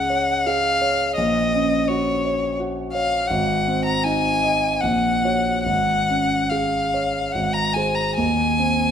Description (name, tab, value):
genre	classical, romantic duo for violin and grand piano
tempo	70-88 BPM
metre	3/4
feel	rubato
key	Db major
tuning	A4 = 440 Hz
part	rich violin	melody	0.0-8.9 s	Db5 to Bb5	-21 LUFS	left 2 dB	none
part	warm concert grand piano	accompaniment	0.0-8.9 s	Ab1 to Eb5	-22 LUFS	right 2 dB	none
room	moderate recital hall reverb, RT60 1.7 s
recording	none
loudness	-18 LUFS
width	side -8 dB against mid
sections	0.0-8.9 A section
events	none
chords	0.0 Db; 1.2 Gb/Bb; 3.3 Ab; 4.8 Gb/Bb; 5.6 Db/Ab; 7.3 Ab; 8.2 Cm/Eb